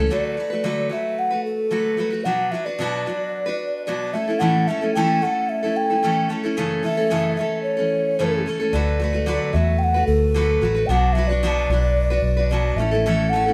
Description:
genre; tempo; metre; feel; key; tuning
pop; 111 BPM; 4/4; straight; unclear; A4 = 440 Hz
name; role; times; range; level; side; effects
picked steel-string acoustic guitar; accompaniment; 0.0-13.5 s; F#2 to B4; -25 LUFS; equal; none
vintage muted fingered electric bass; bass; 0.0-0.1, 8.7-13.5 s; A1 to E2; -23 LUFS; equal; none
mellow hollow round clay ocarina; melody; 0.1-13.5 s; A4 to G5; -25 LUFS; equal; none
room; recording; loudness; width
moderate small room reverb, RT60 0.6 s; band playing live in one room; -21 LUFS; mono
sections
0.1-13.5 A section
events
none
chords
0.1 D6; 2.2 Bm; 4.1 A; 6.6 F#m7; 8.7 D6; 10.9 Bm; 12.8 A

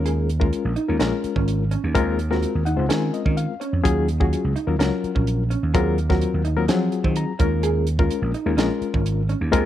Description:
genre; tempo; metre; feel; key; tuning
electric jazz fusion; 127 BPM; 4/4; straight; unclear; A4 = 440 Hz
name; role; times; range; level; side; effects
barky reed electric piano; accompaniment; 0.0-9.7 s; Gb3 to Bb5; -24 LUFS; left 6 dB; overdrive, fast tremolo
electric guitar through a small old amp; stabs; 0.0-9.7 s; C4 to Ab4; -29 LUFS; right 7 dB; analog chorus
vintage slap bass; bass; 0.0-9.7 s; Ab1 to F3; -22 LUFS; right 1 dB; none
tight funk drum kit; drums; 0.1-9.6 s; hi-hat, kick drum, snare drum; -24 LUFS; right 1 dB; none
room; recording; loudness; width
little or no reverb; dry, close 1970s-style studio recording; -19 LUFS; side -12 dB against mid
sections
0.0-9.7 A section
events
reed electric piano fill 2.4-3.9, 6.9-7.6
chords
0.0 Db6; 2.0 Gbmaj9#11; 3.9 Ebm11; 5.7 Ab13/Eb; 7.4 Db6

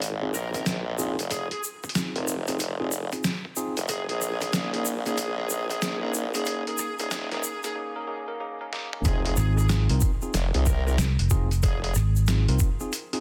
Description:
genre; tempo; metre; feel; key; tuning
glitch hop; 93 BPM; 4/4; swing 63% on 16ths; F minor; A4 = 441 Hz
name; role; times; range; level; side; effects
formant-sweep wobble bass; bass; 0.0-11.9 s; Eb1 to C2; -31 LUFS; equal; chorus, overdrive, high-pass filter
boom bap sampler-style drum kit; drums; 0.0-13.2 s; hi-hat, rim click, snare drum, toms; -33 LUFS; equal; overdrive, small room ambience
tube shaker; percussion; 0.0-13.1 s; none; -37 LUFS; equal; none
tine electric piano; stabs; 0.2-13.2 s; Bb3 to Bb4; -36 LUFS; equal; sidechain pumping, low-pass filter, dub echo
bluesy overdriven lead guitar; melody; 0.3-11.9 s; Ab4 to Bb4; -38 LUFS; equal; distortion, dub echo
electronic kick drum; drums; 0.5-12.8 s; none; -28 LUFS; equal; overdrive, high-pass filter on kick, small room ambience
fingered electric bass; bass; 9.4-12.6 s; F1 to C2; -24 LUFS; equal; tube saturation
room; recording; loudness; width
light reverb; dense, heavily limited modern master, high-pass filter; -27 LUFS; mono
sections
0.0-9.1 A section; 9.1-13.2 B section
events
build-up 0.0-9.1; filter sweep on tine electric piano 0.0-9.1; break 7.8-9.1; drum fill 8.6-9.1; drop 9.1-13.2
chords
0.0 Fm7; 3.9 Gb69 (rootless); 9.1 Fm7

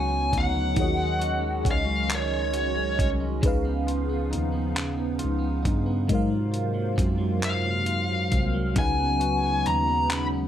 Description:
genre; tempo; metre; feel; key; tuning
slow six-eight R&B; 45 BPM (dotted quarters); 6/8; straight; unclear; A4 = 441 Hz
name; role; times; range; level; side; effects
smooth overdriven lead guitar; melody; 0.0-3.1, 7.5-10.2 s; Db5 to Cb6; -26 LUFS; left 1 dB; slapback echo, plate reverb
clean electric guitar; second line; 0.0-10.5 s; Ab2 to Gb4; -31 LUFS; right 4 dB; none
FM electric piano with soft pad layer; accompaniment; 0.0-10.5 s; Db3 to Gb5; -32 LUFS; left 2 dB; chorus, phaser, plate reverb
hollow soft pad; sustained chords; 0.0-10.5 s; C3 to Gb4; -34 LUFS; left 1 dB; ensemble chorus
tine electric piano; bass; 0.0-10.5 s; C2 to Ab2; -28 LUFS; equal; phaser
dusty soul sampler-style drum kit; drums; 0.3-10.3 s; handclaps, hi-hat, kick drum; -27 LUFS; equal; none
room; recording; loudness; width
light reverb; none; -22 LUFS; side -10 dB against mid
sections
0.0-10.5 A section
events
none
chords
0.0 Db9sus4; 0.8 Ebm7; 3.4 Db9; 6.1 Ab13; 8.8 Db9sus4

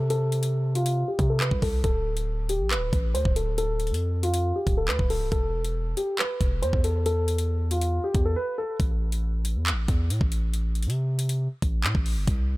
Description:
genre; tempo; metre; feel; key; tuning
hip hop, drill; 138 BPM; 4/4; half-time; A minor; A4 = 442 Hz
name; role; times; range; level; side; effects
dark concert grand piano; melody; 0.0-8.8 s; F4 to C5; -28 LUFS; left 1 dB; low-pass filter, digital delay
long sustained 808-style bass; bass; 0.0-12.6 s; C1 to C3; -26 LUFS; equal; none
drill drum kit; drums; 0.1-12.4 s; handclaps, hi-hat, kick drum; -27 LUFS; equal; none
room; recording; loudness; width
little or no reverb; none; -23 LUFS; side -20 dB against mid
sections
0.0-12.6 A section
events
filter sweep on grand piano 0.0-8.8; break 8.4-8.8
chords
0.0 Am/C; 1.8 Dm; 5.3 E5; 8.8 Am

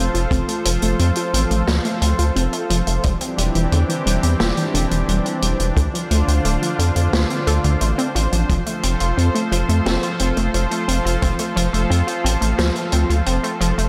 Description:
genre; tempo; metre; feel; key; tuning
synthwave; 88 BPM; 4/4; straight; F major; A4 = 438 Hz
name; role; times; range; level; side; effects
lush unison pad; sustained chords; 0.0-13.9 s; D3 to C5; -26 LUFS; equal; chorus, sidechain pumping
unison pluck; arpeggios; 0.0-13.9 s; D3 to A4; -26 LUFS; equal; tape echo
round analog bass; bass; 0.0-13.9 s; D1 to F2; -21 LUFS; equal; tube saturation, sidechain pumping
vintage drum kit; drums; 0.1-13.9 s; hi-hat, snare drum; -27 LUFS; equal; none
kick drum; drums; 0.3-11.4 s; none; -23 LUFS; equal; none
room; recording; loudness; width
moderate concert hall reverb, RT60 2.4 s; big arena sound; -19 LUFS; mono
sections
0.0-13.9 A section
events
none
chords
0.0 F; 3.0 Cadd9/E; 5.8 Dm7; 8.5 F

